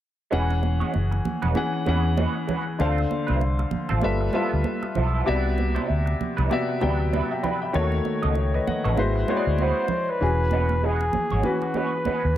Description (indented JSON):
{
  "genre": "lush 1970s-style soul",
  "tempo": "97 BPM",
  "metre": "4/4",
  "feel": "swing 58% on 16ths",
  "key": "E major",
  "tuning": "A4 = 439 Hz",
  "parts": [
    { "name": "warm grand piano", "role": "accompaniment", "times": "0.3-12.4 s", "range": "C3 to B5", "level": "-26 LUFS", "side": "left 3 dB", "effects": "none" },
    { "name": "electric guitar through a small old amp", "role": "riff", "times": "0.3-12.3 s", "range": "F3 to D#5", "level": "-31 LUFS", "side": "right 5 dB", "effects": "wah" },
    { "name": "vintage muted fingered electric bass", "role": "bass", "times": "0.3-12.3 s", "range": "E1 to E2", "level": "-23 LUFS", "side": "equal", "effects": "none" },
    { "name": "congas", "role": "percussion", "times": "0.3-12.2 s", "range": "none", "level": "-32 LUFS", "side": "right 6 dB", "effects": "none" },
    { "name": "breathy flugelhorn", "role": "melody", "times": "9.6-12.4 s", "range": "F#4 to B#4", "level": "-26 LUFS", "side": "equal", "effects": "none" }
  ],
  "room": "light reverb, small room ambience",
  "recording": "none",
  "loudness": "-21 LUFS",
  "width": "side -12 dB against mid",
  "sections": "0.3-10.2 A section; 10.2-12.4 B section",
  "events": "none",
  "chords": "0.3 E69; 2.8 Dm7; 4.0 G13; 5.3 Cmaj9#11; 7.7 D#m7b5; 9.0 G#7alt; 10.2 E69",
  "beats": "| 0.32 0.94 1.56 2.18 | 2.80 3.41 4.03 4.65 | 5.27 5.89 6.50 7.12 | 7.74 8.36 8.98 9.59 | 10.21 10.83 11.45 12.06"
}